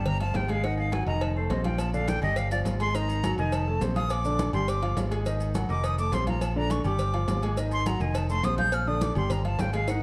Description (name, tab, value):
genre	latin, salsa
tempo	208 BPM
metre	4/4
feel	straight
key	unclear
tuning	A4 = 439 Hz
part	bright silver concert flute	melody	0.0-10.0 s	C5 to G6	-34 LUFS	equal	none
part	warm concert grand piano	accompaniment	0.0-10.0 s	D3 to C6	-34 LUFS	equal	none
part	modern bright picked electric bass	bass	0.0-10.0 s	F1 to Bb1	-31 LUFS	equal	none
part	congas	percussion	0.1-10.0 s	none	-36 LUFS	equal	none
part	cowbell	percussion	0.1-10.0 s	none	-41 LUFS	equal	none
part	agogo bells and timbales	percussion	0.2-9.9 s	none	-41 LUFS	equal	none
part	maracas	percussion	1.8-10.0 s	none	-52 LUFS	equal	none
room	moderate large studio reverb, RT60 1.4 s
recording	dark, warm production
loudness	-27 LUFS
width	mono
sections	0.0-10.0 A section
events	flute solo 0.0-10.0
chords	0.1 Fmadd9/G; 0.6 Ab5; 1.2 F7; 1.8 Bb; 2.4 Fmadd9/G; 2.9 Ab5; 3.5 F7; 4.1 Bb; 4.7 G5; 5.3 Ab5; 5.8 F7; 6.4 Bb; 7.0 G5; 7.6 Ab5; 8.2 F7; 8.7 Bb; 9.3 Fmadd9/G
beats	0.06 0.35 | 0.64 0.93 1.22 1.50 | 1.79 2.08 2.37 2.66 | 2.95 3.24 3.53 3.81 | 4.10 4.39 4.68 4.97 | 5.26 5.55 5.84 6.13 | 6.42 6.71 7.00 7.28 | 7.57 7.86 8.15 8.44 | 8.73 9.02 9.30 9.59 | 9.88